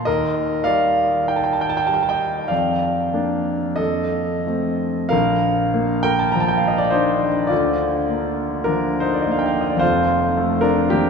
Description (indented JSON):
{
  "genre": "classical, romantic nocturne for solo piano",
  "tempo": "44-55 BPM",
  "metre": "4/4",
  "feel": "rubato",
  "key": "Bb major",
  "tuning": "A4 = 440 Hz",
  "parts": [
    { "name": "warm concert grand piano", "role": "solo", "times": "0.0-11.1 s", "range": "F1 to Bb5", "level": "-17 LUFS", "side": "equal", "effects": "none" }
  ],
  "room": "wet cathedral reverb, RT60 5.5 s",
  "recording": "in a vast, echoing space, studio ambience",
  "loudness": "-17 LUFS",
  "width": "side -5 dB against mid",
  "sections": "0.0-5.1 A section; 5.1-11.1 B section",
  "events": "none",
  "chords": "0.1 Eb; 2.5 Bb/F; 3.8 F; 5.1 Bb; 7.5 Bb/D; 9.8 F",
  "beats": "| 0.07 1.26 2.51 3.79 | 5.12 6.35 7.51 8.67 | 9.81 10.92"
}